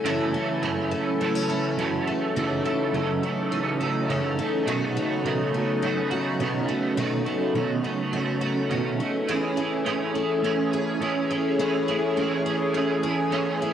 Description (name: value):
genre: dream pop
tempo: 104 BPM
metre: 4/4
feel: straight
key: F# dorian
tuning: A4 = 440 Hz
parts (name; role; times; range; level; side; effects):
- electric guitar at the edge of break-up; accompaniment; 0.0-13.7 s; F#2 to A4; -26 LUFS; right 6 dB; harmonic tremolo, ensemble chorus, cassette tape
- phased analog pad; sustained chords; 0.0-13.7 s; C#3 to G#4; -28 LUFS; equal; phaser, chorus, cassette tape
- picked twelve-string acoustic guitar; arpeggios; 0.0-13.7 s; D#3 to G#4; -29 LUFS; left 7 dB; wide subtle chorus, cassette tape, analog delay
- backwards swelling texture; texture; 0.0-2.2, 10.4-13.7 s; G#4 to G#5; -35 LUFS; equal; built-in reverb, cassette tape, analog delay
room: moderate spring reverb, RT60 1.4 s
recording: home recording on cassette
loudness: -23 LUFS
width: side -9 dB against mid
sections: 0.1-13.7 A section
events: none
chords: 0.1 F#m7; 4.7 B9; 9.3 Amaj7